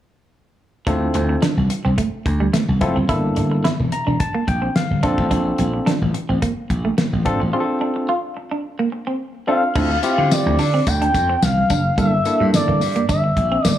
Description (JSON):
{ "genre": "early-eighties boogie funk", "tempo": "108 BPM", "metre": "4/4", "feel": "straight", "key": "unclear", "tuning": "A4 = 440 Hz", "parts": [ { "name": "barky tine electric piano", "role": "accompaniment", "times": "0.9-12.8 s", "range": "Bb3 to Bb5", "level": "-23 LUFS", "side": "left 2 dB", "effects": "none" }, { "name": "semi-hollow electric guitar", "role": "riff", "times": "0.9-13.7 s", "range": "G3 to F4", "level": "-24 LUFS", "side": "right 3 dB", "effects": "wide subtle chorus" }, { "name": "slap bass", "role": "bass", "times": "0.9-13.8 s", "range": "E1 to D3", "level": "-20 LUFS", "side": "equal", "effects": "none" }, { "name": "damped 70s drum kit", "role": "drums", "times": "0.9-13.8 s", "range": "crash cymbal, hi-hat, kick drum, snare drum", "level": "-22 LUFS", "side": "equal", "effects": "gated reverb" }, { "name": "expressive portamento lead", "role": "melody", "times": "9.5-13.8 s", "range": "D5 to G5", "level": "-20 LUFS", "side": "equal", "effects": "chorus, slapback echo" }, { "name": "tambourine", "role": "percussion", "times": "10.0-13.8 s", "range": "none", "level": "-31 LUFS", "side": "left 9 dB", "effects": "none" } ], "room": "light reverb, small room ambience", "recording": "none", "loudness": "-17 LUFS", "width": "side -11 dB against mid", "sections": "0.9-9.8 A section; 9.8-13.8 B section", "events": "tine electric piano fill 3.6-5.3; break 7.5-9.8", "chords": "0.9 Dm9; 3.1 Gm69; 5.0 Bbmaj9; 9.8 Dm9; 12.0 Gm69" }